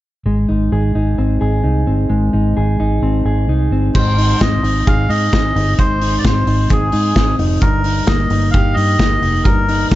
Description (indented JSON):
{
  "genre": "jangly indie pop",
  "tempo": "131 BPM",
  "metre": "4/4",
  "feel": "straight",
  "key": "unclear",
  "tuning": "A4 = 441 Hz",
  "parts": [
    { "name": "mellow electric guitar", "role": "arpeggios", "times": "0.3-10.0 s", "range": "G2 to Ab4", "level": "-18 LUFS", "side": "left 1 dB", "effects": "ping-pong delay" },
    { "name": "vintage muted fingered electric bass", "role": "bass", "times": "0.3-10.0 s", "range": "F1 to Ab2", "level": "-17 LUFS", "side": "equal", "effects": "none" },
    { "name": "melodica", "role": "melody", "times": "3.9-10.0 s", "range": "Ab4 to F5", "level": "-19 LUFS", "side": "equal", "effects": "none" },
    { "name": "loose indie drum kit", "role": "drums", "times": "4.0-10.0 s", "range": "crash cymbal, hi-hat, kick drum, snare drum", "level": "-17 LUFS", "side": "equal", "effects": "none" }
  ],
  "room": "light reverb, studio reverb",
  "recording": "cassette tape, nothing above 7.7 kHz",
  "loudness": "-13 LUFS",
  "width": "side -15 dB against mid",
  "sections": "0.3-3.9 A section; 3.9-10.0 B section",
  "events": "none",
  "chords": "0.3 Ab; 7.6 Eb"
}